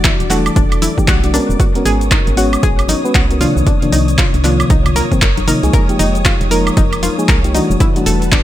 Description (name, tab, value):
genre	deep house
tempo	116 BPM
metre	4/4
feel	swing 61% on 16ths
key	unclear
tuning	A4 = 441 Hz
part	analog pluck	arpeggios	0.0-8.4 s	D4 to Bb4	-21 LUFS	left 2 dB	chorus, sidechain pumping, digital delay
part	mellow FM electric piano	stabs	0.0-8.4 s	C3 to Db5	-17 LUFS	left 2 dB	chorus, sidechain pumping, low-pass filter, ping-pong delay
part	woody FM bass	bass	0.0-8.4 s	E1 to C2	-17 LUFS	equal	sidechain pumping
part	deep house drum kit	drums	0.0-8.4 s	cabasa, handclaps, hi-hat, woodblock	-19 LUFS	right 1 dB	none
part	electronic kick drum	drums	0.0-8.4 s	none	-14 LUFS	equal	none
part	soft string machine	texture	0.0-8.4 s	B4 to Eb6	-26 LUFS	right 1 dB	ensemble chorus, sidechain pumping
part	congas	percussion	0.8-7.2 s	none	-24 LUFS	left 6 dB	none
room	little or no reverb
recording	none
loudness	-11 LUFS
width	side -13 dB against mid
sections	0.0-8.4 A section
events	none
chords	0.0 Em11; 1.6 Abm11; 3.4 Cm11; 5.7 Fm11; 7.8 Em11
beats	0.04 0.56 1.08 | 1.60 2.11 2.63 3.15 | 3.67 4.18 4.70 5.22 | 5.73 6.25 6.77 7.29 | 7.80 8.32